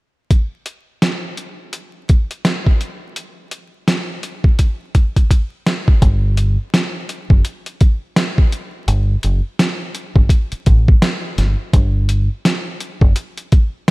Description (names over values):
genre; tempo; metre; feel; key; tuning
hip hop, boom-bap hip-hop; 84 BPM; 4/4; swing 60% on 16ths; unclear; A4 = 441 Hz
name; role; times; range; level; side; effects
boom bap sampler-style drum kit; drums; 0.3-13.9 s; hi-hat, kick drum, snare drum; -13 LUFS; equal; none
deep dub fingered electric bass; bass; 6.0-13.1 s; F#1 to A1; -15 LUFS; equal; none
room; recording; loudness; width
little or no reverb; bright 1980s-style digital production, vinyl crackle; -14 LUFS; side -23 dB against mid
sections
0.3-6.0 A section; 6.0-13.9 B section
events
drum fill 4.6-6.0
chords
none